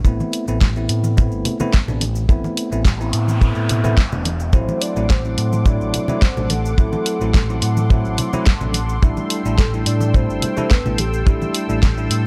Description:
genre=nu-disco, nu disco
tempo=107 BPM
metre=4/4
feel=straight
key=A dorian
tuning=A4 = 439 Hz
part: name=bell-like tine electric piano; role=accompaniment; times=0.0-12.3 s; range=F#3 to E4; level=-27 LUFS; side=equal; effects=sidechain pumping
part: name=overdriven fingered electric bass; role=bass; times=0.0-12.3 s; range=E1 to A2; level=-23 LUFS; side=equal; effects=none
part: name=kick drum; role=drums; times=0.0-11.9 s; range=none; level=-17 LUFS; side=equal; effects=small room ambience
part: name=maracas and congas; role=percussion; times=0.0-12.1 s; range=none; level=-29 LUFS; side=equal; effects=none
part: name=pop drum kit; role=drums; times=0.3-12.2 s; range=hi-hat, snare drum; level=-26 LUFS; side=equal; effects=small room ambience
part: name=noise sweep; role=sound effects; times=2.7-4.5 s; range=none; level=-34 LUFS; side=equal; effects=none
part: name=soft octave-layered synth lead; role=melody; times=4.5-11.8 s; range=G4 to D5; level=-29 LUFS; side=equal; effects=chorus, phaser, digital delay
part: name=lush unison pad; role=sustained chords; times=4.5-12.3 s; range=A4 to E6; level=-32 LUFS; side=equal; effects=chorus, phaser, vintage 12-bit sampler grit, sidechain pumping
room=studio reverb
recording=none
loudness=-18 LUFS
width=mono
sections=0.0-12.3 A section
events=noise sweep 2.7-4.5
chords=0.1 Amadd9; 4.5 D7/A; 9.0 C6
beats=| 0.05 0.61 1.17 1.73 | 2.29 2.85 3.42 3.98 | 4.54 5.10 5.66 6.22 | 6.78 7.34 7.90 8.46 | 9.02 9.58 10.14 10.71 | 11.27 11.83

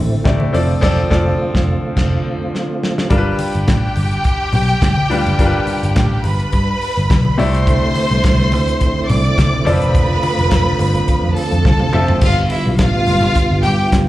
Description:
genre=disco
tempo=105 BPM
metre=4/4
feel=straight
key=unclear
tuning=A4 = 440 Hz
part: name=bright concert grand piano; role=accompaniment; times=0.0-12.2 s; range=C3 to E5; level=-21 LUFS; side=left 2 dB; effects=slapback echo
part: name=mellow tonewheel organ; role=sustained chords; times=0.0-3.1, 7.7-14.1 s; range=D3 to F4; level=-21 LUFS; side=right 2 dB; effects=chorus vibrato, fast rotary speaker
part: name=picked electric bass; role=bass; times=0.0-14.0 s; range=E1 to C3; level=-16 LUFS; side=equal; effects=none
part: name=warm soul drum kit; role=drums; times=0.3-14.1 s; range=crash cymbal, hi-hat, kick drum, snare drum, toms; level=-18 LUFS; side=equal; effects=none
part: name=congas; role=percussion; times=0.3-14.1 s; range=none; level=-22 LUFS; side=left 2 dB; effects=none
part: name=clear studio string section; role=second line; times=3.1-13.9 s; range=E4 to D6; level=-20 LUFS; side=equal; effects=slapback echo
room=small room ambience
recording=live gig heard through the venue's PA, club reverb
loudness=-13 LUFS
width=side -15 dB against mid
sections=0.0-3.1 A section; 3.1-12.2 B section; 12.2-14.1 C section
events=band accent 0.8-3.1; grand piano fill 2.0-3.1; drum fill 2.5-3.1, 11.7-12.2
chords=0.0 C69; 0.5 F6; 3.1 G7; 7.4 C69; 9.7 F6; 12.2 G7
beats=0.26 | 0.83 1.40 1.97 2.54 | 3.11 3.68 4.25 4.82 | 5.39 5.96 6.53 7.10 | 7.67 8.24 8.81 9.38 | 9.95 10.52 11.08 11.65 | 12.22 12.79 13.36 13.92

